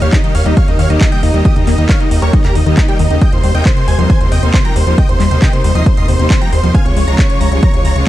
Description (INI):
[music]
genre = uplifting trance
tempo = 136 BPM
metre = 4/4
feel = straight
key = unclear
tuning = A4 = 440 Hz
[part]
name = big supersaw lead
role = melody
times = 0.0-8.1 s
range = Eb4 to C6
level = -19 LUFS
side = equal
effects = sidechain pumping, ping-pong delay
[part]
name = plucky unison lead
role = second line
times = 0.0-8.1 s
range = Eb5 to C7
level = -26 LUFS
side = right 1 dB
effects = phaser, sidechain pumping, dub echo
[part]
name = bright studio string section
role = sustained chords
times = 0.0-8.1 s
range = C3 to G4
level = -22 LUFS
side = right 1 dB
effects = sidechain pumping
[part]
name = tight sequenced synth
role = arpeggios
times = 0.0-8.0 s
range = Bb2 to Bb3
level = -20 LUFS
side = left 5 dB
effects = chorus, sidechain pumping
[part]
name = gritty driven synth bass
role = bass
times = 0.0-8.0 s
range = Db2 to Eb2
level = -14 LUFS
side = equal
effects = distortion, sidechain pumping
[part]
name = house drum kit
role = drums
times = 0.0-8.0 s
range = handclaps, hi-hat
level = -24 LUFS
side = equal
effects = overdrive
[part]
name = electronic kick drum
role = drums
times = 0.1-7.7 s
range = none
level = -12 LUFS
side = equal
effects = overdrive
[sound]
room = digital ambience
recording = dark, warm production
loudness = -9 LUFS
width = side -14 dB against mid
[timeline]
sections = 0.0-8.1 A section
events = none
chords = 0.0 Eb; 3.2 Cm7/Eb; 6.7 Db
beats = 0.13 0.57 1.01 | 1.45 1.89 2.33 2.77 | 3.21 3.66 4.10 4.54 | 4.98 5.42 5.86 6.30 | 6.75 7.19 7.63 8.07